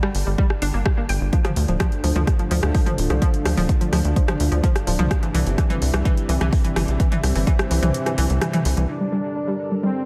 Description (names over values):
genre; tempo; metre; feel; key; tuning
melodic techno; 127 BPM; 4/4; straight; G minor; A4 = 442 Hz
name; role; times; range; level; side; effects
analog pluck; arpeggios; 0.0-9.9 s; E3 to G5; -28 LUFS; equal; chorus, sidechain pumping, diffuse ambient delay
analog drone; drone; 0.0-10.1 s; G2 to D3; -37 LUFS; equal; none
house drum kit; drums; 0.0-8.9 s; hi-hat, rim click, toms; -30 LUFS; equal; overdrive, sidechain pumping on hats, sidechain pumping on toms
tight sequencer bass; bass; 0.1-8.9 s; D1 to D2; -23 LUFS; equal; sidechain pumping
electronic kick drum; drums; 0.4-7.6 s; none; -22 LUFS; equal; overdrive
lush unison pad; sustained chords; 1.3-10.1 s; C3 to Bb4; -30 LUFS; equal; chorus, sidechain pumping
analog synth brass; melody; 8.9-10.1 s; C4 to D4; -29 LUFS; equal; chorus, diffuse ambient delay
room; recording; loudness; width
light reverb, digital ambience; none; -21 LUFS; mono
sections
0.0-8.9 A section; 8.9-10.1 B section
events
kick drops out 7.9-8.9; filter sweep on synth arpeggio sound 8.9-10.1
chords
0.0 Gm; 1.3 Dm; 5.1 C; 8.9 Gm